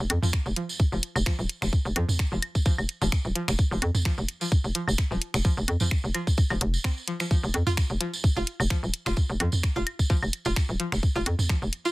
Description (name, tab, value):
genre	minimal techno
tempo	129 BPM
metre	4/4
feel	swing 54% on 16ths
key	unclear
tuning	A4 = 436 Hz
part	hollow knocking FM bass	bass	0.0-11.7 s	Eb1 to F2	-26 LUFS	equal	sidechain pumping
part	tambourine	percussion	0.0-11.9 s	none	-36 LUFS	right 3 dB	none
part	garage drum kit	drums	0.1-11.8 s	finger snaps, hi-hat	-30 LUFS	equal	soft clipping on snare
part	electronic claves and toms	percussion	0.1-11.5 s	none	-29 LUFS	right 1 dB	none
part	string-like resonator pluck	riff	0.2-11.9 s	F3 to F4	-32 LUFS	equal	chorus, sidechain pumping, tape echo
part	electronic kick drum	drums	0.3-11.6 s	none	-23 LUFS	equal	none
room	little or no reverb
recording	dense, heavily limited modern master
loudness	-24 LUFS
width	side -20 dB against mid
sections	0.0-11.9 A section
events	none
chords	0.0 F5